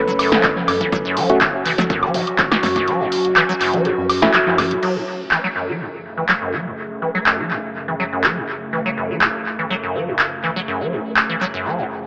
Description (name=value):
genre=acid house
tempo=123 BPM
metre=4/4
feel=straight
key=F# minor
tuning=A4 = 440 Hz
part: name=warbly tape-like pad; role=sustained chords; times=0.0-12.1 s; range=F#2 to A4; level=-27 LUFS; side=equal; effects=chorus, built-in reverb, phaser, sidechain pumping
part: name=percussive organ stab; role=stabs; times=0.0-4.3 s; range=A3 to B4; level=-24 LUFS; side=equal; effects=chorus, cassette tape, dub echo
part: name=acid bass, square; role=riff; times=0.1-11.8 s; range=F#2 to F#3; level=-25 LUFS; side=equal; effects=lush chorus, dub echo
part: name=round analog bass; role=bass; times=0.1-4.7 s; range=E1 to F#2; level=-34 LUFS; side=equal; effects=sidechain pumping
part: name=punchy analog drum machine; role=drums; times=0.2-11.5 s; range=congas, crash cymbal, handclaps, hi-hat, snare drum, woodblock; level=-21 LUFS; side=equal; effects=dub echo
part: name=electronic kick drum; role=drums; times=0.4-2.9 s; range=none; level=-30 LUFS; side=equal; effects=none
room=wet spring reverb, RT60 1.8 s, digital ambience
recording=echo-heavy mix, AM radio sound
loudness=-19 LUFS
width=mono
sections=0.0-4.8 A section; 4.8-12.1 B section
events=drop 0.0-4.8; kick drops out 2.9-4.8; band accent 4.3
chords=0.0 F#m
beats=0.44 | 0.92 1.41 1.90 2.39 | 2.88 3.36 3.85 4.34 | 4.83 5.31 5.80 6.29 | 6.78 7.27 7.75 8.24 | 8.73 9.22 9.71 10.19 | 10.68 11.17 11.66